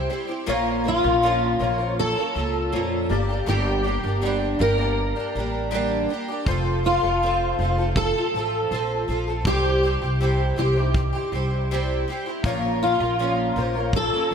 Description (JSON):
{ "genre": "acoustic pop", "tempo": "80 BPM", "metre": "4/4", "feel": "straight", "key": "F major", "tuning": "A4 = 440 Hz", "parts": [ { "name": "fingerpicked steel-string acoustic guitar", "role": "melody", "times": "0.0-14.3 s", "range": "F4 to Bb4", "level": "-24 LUFS", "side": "equal", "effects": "ensemble chorus" }, { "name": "picked twelve-string acoustic guitar", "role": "accompaniment", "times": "0.0-14.3 s", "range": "G2 to Bb4", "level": "-26 LUFS", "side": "right 1 dB", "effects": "double-tracked left and right" }, { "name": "warm upright piano", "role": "accompaniment", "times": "0.0-14.3 s", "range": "G3 to D5", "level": "-33 LUFS", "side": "left 4 dB", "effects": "ensemble chorus" }, { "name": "upright bass", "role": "bass", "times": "0.0-14.3 s", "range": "F1 to F2", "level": "-26 LUFS", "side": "equal", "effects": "none" }, { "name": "kick drum", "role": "drums", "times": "6.5-14.1 s", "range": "none", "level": "-26 LUFS", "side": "equal", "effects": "none" } ], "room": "moderate lush hall reverb, RT60 2.0 s, small room ambience", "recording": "bright 1980s-style digital production", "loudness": "-20 LUFS", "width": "side -7 dB against mid", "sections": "0.0-14.3 A section", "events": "none", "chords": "0.5 Bbm; 3.1 Gm; 6.5 F; 9.5 C; 12.4 Bbm" }